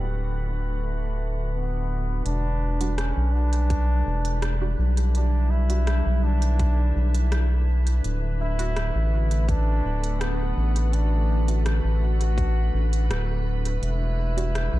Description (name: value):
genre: ambient dub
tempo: 83 BPM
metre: 4/4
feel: straight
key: E minor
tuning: A4 = 440 Hz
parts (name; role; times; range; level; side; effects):
- clear trombone; melody; 0.0-14.8 s; G3 to F#4; -33 LUFS; equal; dub echo
- soft additive organ-like pad; sustained chords; 0.0-14.8 s; D3 to B4; -34 LUFS; left 1 dB; ensemble chorus, built-in reverb, vintage 12-bit sampler grit
- filtered dub chord stab; stabs; 0.0-14.5 s; G3 to F#4; -39 LUFS; right 3 dB; none
- round analog bass; bass; 0.0-14.8 s; D1 to B1; -22 LUFS; equal; tube saturation
- drifting glass-harmonics texture; texture; 0.0-14.8 s; B4; -39 LUFS; left 1 dB; chorus, built-in reverb
- organic electronic drum kit; drums; 2.3-14.7 s; hi-hat, rim click; -36 LUFS; equal; dub echo
- electronic kick drum; drums; 3.7-12.5 s; none; -28 LUFS; equal; none
room: digital ambience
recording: dark, warm production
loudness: -21 LUFS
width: side -16 dB against mid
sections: 0.0-2.3 A section; 2.3-14.8 B section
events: none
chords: 0.0 D6; 2.3 Em7; 8.0 D6; 13.8 Em7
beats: 0.09 0.81 1.54 | 2.26 2.98 3.70 4.43 | 5.15 5.87 6.60 7.32 | 8.04 8.77 9.49 10.21 | 10.93 11.66 12.38 13.10 | 13.82 14.55